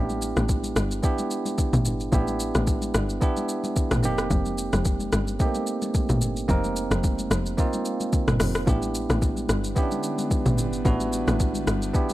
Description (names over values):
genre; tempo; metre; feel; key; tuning
amapiano; 110 BPM; 4/4; swing 55% on 16ths; unclear; A4 = 444 Hz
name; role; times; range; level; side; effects
bell-like tine electric piano; accompaniment; 0.0-12.1 s; A3 to Bb4; -28 LUFS; right 3 dB; none
tight log drum bass; bass; 0.0-11.9 s; F1 to A1; -26 LUFS; equal; none
smooth R&B drum kit; drums; 0.1-12.1 s; hi-hat, kick drum, rim click, shaker, toms; -25 LUFS; equal; overdrive
congas; percussion; 0.1-12.1 s; none; -36 LUFS; left 3 dB; none
airy breathy pad; sustained chords; 9.1-12.1 s; D3 to B3; -35 LUFS; left 1 dB; chorus, sidechain pumping
room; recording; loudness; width
little or no reverb; dry, gritty hardware recording; -22 LUFS; side -16 dB against mid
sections
0.0-12.1 A section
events
none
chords
0.0 A9sus4; 4.0 F9sus4; 8.7 A9sus4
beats
0.49 1.03 1.58 | 2.12 2.67 3.22 3.76 | 4.31 4.85 5.40 5.94 | 6.49 7.03 7.58 8.12 | 8.67 9.22 9.76 10.31 | 10.85 11.40 11.94